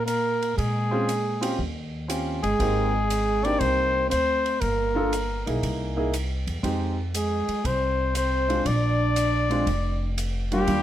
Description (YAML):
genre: jazz, small-group swing and bop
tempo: 119 BPM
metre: 4/4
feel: swing 68% on 8ths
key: unclear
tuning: A4 = 441 Hz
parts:
  - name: breathy trumpet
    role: melody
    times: 0.0-10.8 s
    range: G4 to D5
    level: -26 LUFS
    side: left 3 dB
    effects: none
  - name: mellow trombone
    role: second line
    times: 0.0-10.8 s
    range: G3 to D4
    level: -29 LUFS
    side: right 4 dB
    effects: none
  - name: upright bass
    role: bass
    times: 0.0-10.8 s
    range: F1 to Bb2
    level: -28 LUFS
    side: equal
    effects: none
  - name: compact cocktail drum kit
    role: drums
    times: 0.1-10.8 s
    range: hi-hat, kick drum, ride cymbal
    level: -35 LUFS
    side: right 1 dB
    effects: none
  - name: clear concert grand piano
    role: accompaniment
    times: 0.9-10.8 s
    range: G3 to A4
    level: -28 LUFS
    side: right 1 dB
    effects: none
room: light reverb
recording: none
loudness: -22 LUFS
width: side -12 dB against mid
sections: 0.0-10.8 A section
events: none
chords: 0.0 N.C.; 0.6 Bbm7; 1.6 Eb13; 2.6 Abmaj9; 4.6 Gm9; 5.6 C7alt; 6.6 Fm9; 8.7 Bb